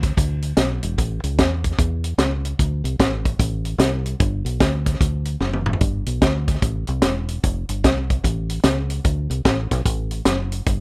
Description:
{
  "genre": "uptempo gospel",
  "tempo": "149 BPM",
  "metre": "4/4",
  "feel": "swing 64% on 8ths",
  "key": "unclear",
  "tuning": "A4 = 439 Hz",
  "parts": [
    { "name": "fingered electric bass", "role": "bass", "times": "0.0-10.8 s", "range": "E1 to E2", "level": "-22 LUFS", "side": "equal", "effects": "none" },
    { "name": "tight funk drum kit", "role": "drums", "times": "0.0-10.8 s", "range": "hi-hat, kick drum, snare drum, toms", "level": "-19 LUFS", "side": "equal", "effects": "none" }
  ],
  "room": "light reverb",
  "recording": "rough home demo mix",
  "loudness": "-18 LUFS",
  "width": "side -28 dB against mid",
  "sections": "0.0-10.8 A section",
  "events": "drum fill 5.4-5.8",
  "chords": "none"
}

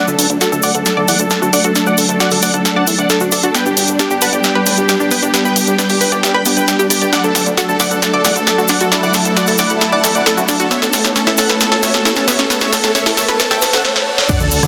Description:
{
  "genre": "uplifting trance",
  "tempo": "134 BPM",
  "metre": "4/4",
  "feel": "straight",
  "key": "D major",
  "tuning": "A4 = 440 Hz",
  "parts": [
    { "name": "big supersaw lead", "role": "melody", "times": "0.0-14.6 s", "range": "G4 to B5", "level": "-20 LUFS", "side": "equal", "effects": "sidechain pumping, low-pass filter, dub echo" },
    { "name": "dark studio string section", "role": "sustained chords", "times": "0.0-14.7 s", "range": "F#3 to E4", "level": "-21 LUFS", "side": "equal", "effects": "sidechain pumping" },
    { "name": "plucky analog bass", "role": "bass", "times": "0.1-14.7 s", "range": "G1 to G2", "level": "-25 LUFS", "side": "equal", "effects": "sidechain pumping, high-pass filter" },
    { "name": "cabasa", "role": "percussion", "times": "0.1-14.7 s", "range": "none", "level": "-24 LUFS", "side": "equal", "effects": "none" },
    { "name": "punchy analog drum machine", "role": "drums", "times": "0.2-14.7 s", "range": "crash cymbal, hi-hat, rim click, snare drum", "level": "-18 LUFS", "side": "equal", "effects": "high-pass filter on snare, sidechain pumping on hats, high-pass filter on hats, sidechain pumping on cymbals, high-pass filter on cymbals" },
    { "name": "analog pluck", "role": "arpeggios", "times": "0.4-14.3 s", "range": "B3 to G5", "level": "-22 LUFS", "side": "equal", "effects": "chorus, sidechain pumping, digital delay" },
    { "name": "riser and sub drop", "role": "sound effects", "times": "10.2-14.7 s", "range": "none", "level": "-26 LUFS", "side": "equal", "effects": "none" },
    { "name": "electronic kick drum", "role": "drums", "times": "14.3-14.4 s", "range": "none", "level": "-20 LUFS", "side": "equal", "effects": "none" }
  ],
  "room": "moderate huge ambient reverb, RT60 6.8 s",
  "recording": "dense, heavily limited modern master",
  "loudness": "-13 LUFS",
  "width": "mono",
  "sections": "0.0-14.3 A section",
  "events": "build-up 0.0-14.3; drum fill 0.0-13.8, 13.8-14.3; riser 10.2-14.3; impact 14.3-14.7",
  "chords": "0.0 D; 3.5 G; 7.1 D; 10.7 Aadd9"
}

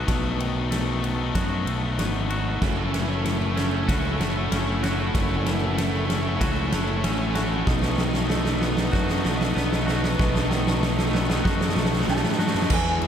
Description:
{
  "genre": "post-rock",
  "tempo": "95 BPM",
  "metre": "4/4",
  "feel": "straight",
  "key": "unclear",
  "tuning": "A4 = 440 Hz",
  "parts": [
    { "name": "dark chamber string section", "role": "sustained chords", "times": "0.0-13.1 s", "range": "G#4 to E6", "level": "-37 LUFS", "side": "left 1 dB", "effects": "none" },
    { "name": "twangy electric guitar", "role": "arpeggios", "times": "0.0-13.1 s", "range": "E2 to F#4", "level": "-31 LUFS", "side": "equal", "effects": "diffuse ambient delay" },
    { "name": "thick fuzz guitar", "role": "riff", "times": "0.0-13.1 s", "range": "E3 to G#4", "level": "-29 LUFS", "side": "left 6 dB", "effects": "distortion" },
    { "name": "growling fingered electric bass", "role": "bass", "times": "0.0-13.1 s", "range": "F#1 to A2", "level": "-27 LUFS", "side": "equal", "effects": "overdrive" },
    { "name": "huge arena drum kit", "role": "drums", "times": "0.1-13.1 s", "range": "crash cymbal, kick drum, ride cymbal, snare drum", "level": "-26 LUFS", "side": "equal", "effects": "none" },
    { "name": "biting overdriven guitar", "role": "riff", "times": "2.6-12.7 s", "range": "A3 to D#4", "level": "-31 LUFS", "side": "right 10 dB", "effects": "none" },
    { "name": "electric guitar through a small old amp", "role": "melody", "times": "12.1-13.1 s", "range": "G#5 to A5", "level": "-28 LUFS", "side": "right 2 dB", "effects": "ensemble chorus" }
  ],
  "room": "moderate lush hall reverb, RT60 1.8 s, small room ambience",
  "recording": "dreamy mix soaked in reverb",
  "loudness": "-21 LUFS",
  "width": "side -8 dB against mid",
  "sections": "0.0-12.7 A section",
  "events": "build-up 0.0-12.7; drum fill 0.0-12.7",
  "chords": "0.0 B7; 2.6 F#m7; 7.7 B7"
}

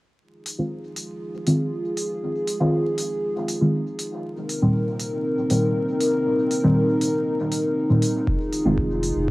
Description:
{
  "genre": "dub techno",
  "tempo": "119 BPM",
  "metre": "4/4",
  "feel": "straight",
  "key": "F minor",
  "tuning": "A4 = 439 Hz",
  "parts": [
    { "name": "dark analog pad", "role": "sustained chords", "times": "0.2-9.3 s", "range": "C4 to Bb4", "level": "-24 LUFS", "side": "equal", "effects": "chorus, sidechain pumping" },
    { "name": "electronic hi-hat", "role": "drums", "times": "0.5-9.1 s", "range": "none", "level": "-31 LUFS", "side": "equal", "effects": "none" },
    { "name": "deep mellow chord stab", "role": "stabs", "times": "0.6-9.3 s", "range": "Bb2 to F4", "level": "-23 LUFS", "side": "equal", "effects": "chorus, phaser, sidechain pumping, dub echo" },
    { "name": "warm sub bass", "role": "bass", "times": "8.3-9.3 s", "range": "F1", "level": "-27 LUFS", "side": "equal", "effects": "sidechain pumping" },
    { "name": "electronic kick drum", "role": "drums", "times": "8.3-9.3 s", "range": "none", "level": "-26 LUFS", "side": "equal", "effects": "overdrive" }
  ],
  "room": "light reverb",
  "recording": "home recording on cassette, vinyl crackle",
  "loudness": "-20 LUFS",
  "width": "side -20 dB against mid",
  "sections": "0.2-9.3 A section",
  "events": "filter sweep on synth stab 0.2-9.3",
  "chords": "0.2 Fm7; 4.2 Cm7; 8.3 Fm7"
}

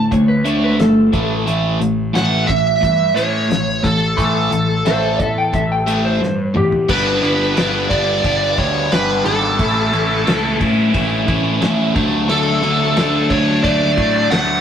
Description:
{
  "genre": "classic rock",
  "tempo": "89 BPM",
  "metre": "4/4",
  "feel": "straight",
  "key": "A mixolydian",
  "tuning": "A4 = 440 Hz",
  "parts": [
    { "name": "smooth overdriven lead guitar", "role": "melody", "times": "0.0-14.6 s", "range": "A4 to F#5", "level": "-18 LUFS", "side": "right 1 dB", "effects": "slapback echo" },
    { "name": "cranked stack guitar", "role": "riff", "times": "0.0-14.6 s", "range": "G2 to G4", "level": "-17 LUFS", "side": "equal", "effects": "overdrive, phaser" },
    { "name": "fuzz picked electric bass", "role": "bass", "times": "0.0-14.6 s", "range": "G1 to A2", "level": "-22 LUFS", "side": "equal", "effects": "overdrive" },
    { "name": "electric slide guitar", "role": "second line", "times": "0.1-6.9 s", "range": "G4 to G5", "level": "-20 LUFS", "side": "left 3 dB", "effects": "none" },
    { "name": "damped 70s drum kit", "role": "drums", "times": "0.1-14.5 s", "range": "crash cymbal, hi-hat, kick drum, ride cymbal, snare drum, toms", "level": "-22 LUFS", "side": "equal", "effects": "none" }
  ],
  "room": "moderate small room reverb, RT60 0.5 s",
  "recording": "rough rehearsal-room recording",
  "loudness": "-14 LUFS",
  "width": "side -8 dB against mid",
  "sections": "0.0-6.9 A section; 6.9-14.6 B section",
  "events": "drum fill 6.2-6.9",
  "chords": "0.0 D5; 1.1 A5; 6.9 G; 9.6 A; 12.0 D"
}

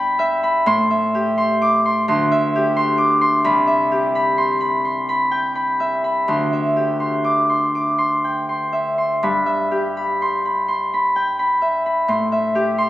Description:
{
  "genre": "classical, solo harp piece",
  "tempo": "40-44 BPM (dotted quarters)",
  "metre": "6/8",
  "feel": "rubato",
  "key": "G major",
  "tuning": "A4 = 441 Hz",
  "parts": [
    { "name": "Celtic harp", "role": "solo", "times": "0.0-12.9 s", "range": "C2 to D6", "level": "-16 LUFS", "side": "equal", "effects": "none" }
  ],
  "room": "moderate stone room reverb, RT60 1.0 s",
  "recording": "recorded on a phone in the room, club reverb",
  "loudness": "-16 LUFS",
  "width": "side -15 dB against mid",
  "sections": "0.0-12.9 A section",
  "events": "none",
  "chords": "0.0 G6; 0.7 Am7; 2.1 D9sus4; 3.4 Cmaj7; 6.3 D9sus4; 9.2 G6; 12.1 Am7"
}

